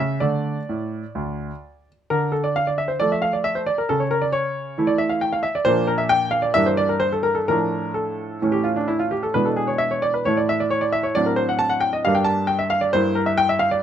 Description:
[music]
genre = classical-period piano sonatina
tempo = 125-138 BPM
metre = 4/4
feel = rubato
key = D minor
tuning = A4 = 436 Hz
[part]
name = clear baby grand piano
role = solo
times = 0.0-13.8 s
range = D2 to A5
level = -19 LUFS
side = equal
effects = none
[sound]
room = light reverb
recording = close, detailed microphones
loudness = -19 LUFS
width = side -9 dB against mid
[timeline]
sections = 0.0-2.1 A section; 2.1-13.8 B section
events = none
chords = 0.2 D5; 2.1 Dm; 3.9 A/C#; 5.7 Bb; 6.6 Em7b5/G; 7.5 Dm/A; 8.4 A; 9.3 E7/B; 10.3 A5; 11.2 D7/A; 12.0 Gm; 12.9 Edim/G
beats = | 0.21 0.68 1.16 1.64 | 2.11 2.56 3.01 3.46 | 3.90 4.34 4.78 5.22 | 5.67 6.11 6.55 7.01 | 7.47 7.94 8.41 8.88 | 9.35 9.81 10.26 10.71 | 11.15 11.60 12.04 12.49 | 12.93 13.37 13.82

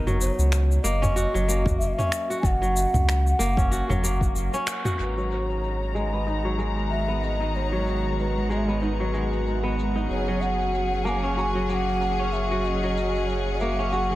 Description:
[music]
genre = organic downtempo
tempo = 94 BPM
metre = 4/4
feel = swing 57% on 16ths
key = G# minor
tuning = A4 = 440 Hz
[part]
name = mellow hollow bass bansuri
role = melody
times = 0.0-14.2 s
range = A#4 to A#5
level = -30 LUFS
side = equal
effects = tape echo
[part]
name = kora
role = arpeggios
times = 0.0-14.2 s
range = F#3 to F#4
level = -28 LUFS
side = equal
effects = low-pass filter, tape echo
[part]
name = warm sub bass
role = bass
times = 0.0-14.2 s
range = F#1 to C#2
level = -26 LUFS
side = equal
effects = none
[part]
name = deep house drum kit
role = drums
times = 0.1-14.2 s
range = cabasa, finger snaps, toms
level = -30 LUFS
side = equal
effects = low-pass filter on perc, low-pass filter on toms, low-pass filter on snare, dub echo
[part]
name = udu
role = percussion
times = 1.0-4.0 s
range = none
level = -32 LUFS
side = equal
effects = none
[part]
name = electronic kick drum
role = drums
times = 1.7-4.3 s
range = none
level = -25 LUFS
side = equal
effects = none
[part]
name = clear symphonic string section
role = sustained chords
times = 5.0-14.2 s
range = D#3 to A#5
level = -30 LUFS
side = equal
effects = sidechain pumping, low-pass filter
[part]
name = drifting glass-harmonics texture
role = texture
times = 6.0-14.2 s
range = F#4 to F#5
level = -36 LUFS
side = right 3 dB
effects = chorus, built-in reverb
[sound]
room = light reverb, small room reverb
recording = echo-heavy mix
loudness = -22 LUFS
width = side -16 dB against mid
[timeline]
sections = 0.0-5.0 A section; 5.0-14.2 B section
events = band accent 4.7-5.0; filter sweep on kora 5.0-14.2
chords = 0.0 F#; 5.0 G#m7; 10.1 F#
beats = 0.52 1.16 1.80 | 2.44 3.08 3.71 4.35 | 4.99 5.63 6.27 6.91 | 7.54 8.18 8.82 9.46 | 10.10 10.73 11.37 12.01 | 12.65 13.29 13.93

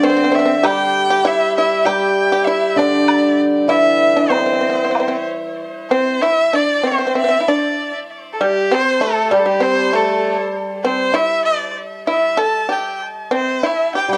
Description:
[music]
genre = chinese traditional, Chinese chamber ensemble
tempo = 97 BPM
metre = 4/4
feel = rubato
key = unclear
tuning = A4 = 438 Hz
[part]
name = clear erhu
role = melody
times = 0.0-14.2 s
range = G4 to A5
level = -20 LUFS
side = equal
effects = tape echo
[part]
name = pipa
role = second line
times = 0.0-14.2 s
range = G3 to A4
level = -21 LUFS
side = equal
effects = none
[part]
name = hammered dulcimer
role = accompaniment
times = 0.0-5.6, 9.3-14.2 s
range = D3 to G3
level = -21 LUFS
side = equal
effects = none
[part]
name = woodblock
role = percussion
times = 0.6-5.1 s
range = none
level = -24 LUFS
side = equal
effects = none
[sound]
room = moderate small room reverb, RT60 0.5 s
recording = none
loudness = -16 LUFS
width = mono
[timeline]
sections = 0.0-5.6 A section; 5.6-14.2 B section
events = none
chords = none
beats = 0.04 | 0.65 1.26 1.86 2.47 | 3.08 3.69 4.31 4.95 | 5.59 6.22 6.85 7.47 | 8.09 8.71 9.32 9.94 | 10.55 11.15 11.76 12.38 | 13.00 13.63

